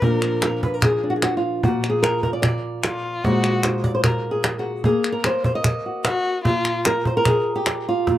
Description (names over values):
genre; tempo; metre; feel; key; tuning
flamenco; 149 BPM; 4/4; straight; unclear; A4 = 440 Hz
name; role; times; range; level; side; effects
flamenco guitar; melody; 0.0-8.2 s; Bb2 to Eb5; -21 LUFS; equal; none
rich violin; second line; 0.0-0.3, 2.8-3.5, 6.1-6.7 s; F4 to Bb4; -24 LUFS; left 2 dB; none
cajon; percussion; 0.0-8.2 s; none; -22 LUFS; equal; none
palmas hand claps; percussion; 0.2-7.9 s; none; -26 LUFS; left 2 dB; none
room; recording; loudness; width
light reverb; recorded outdoors, with no room sound; -18 LUFS; side -13 dB against mid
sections
0.0-8.2 A section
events
none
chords
0.0 Bb; 3.2 Ab7/Bb; 6.5 N.C.